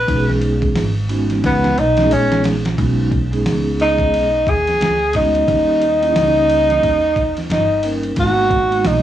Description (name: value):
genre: hip hop, jazz-hop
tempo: 89 BPM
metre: 4/4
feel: swing 60% on 16ths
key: B major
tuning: A4 = 440 Hz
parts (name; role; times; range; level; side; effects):
- breathy tenor saxophone; melody; 0.0-9.0 s; B3 to B4; -15 LUFS; equal; cassette tape
- upright bass; bass; 0.0-9.0 s; G1 to D#2; -21 LUFS; equal; none
- vibraphone with soft mallets; accompaniment; 0.1-9.0 s; G3 to A#4; -21 LUFS; right 2 dB; none
- dusty soul sampler-style drum kit; drums; 0.1-9.0 s; hi-hat, kick drum, ride cymbal, snare drum; -22 LUFS; equal; overdrive
room: light reverb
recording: home recording on cassette, studio ambience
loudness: -14 LUFS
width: side -12 dB against mid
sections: 0.0-2.8 A section; 2.8-9.0 B section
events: tenor saxophone solo 0.0-2.8; drum fill 1.4-2.8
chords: 0.0 B69; 5.5 D#7; 8.2 G#m7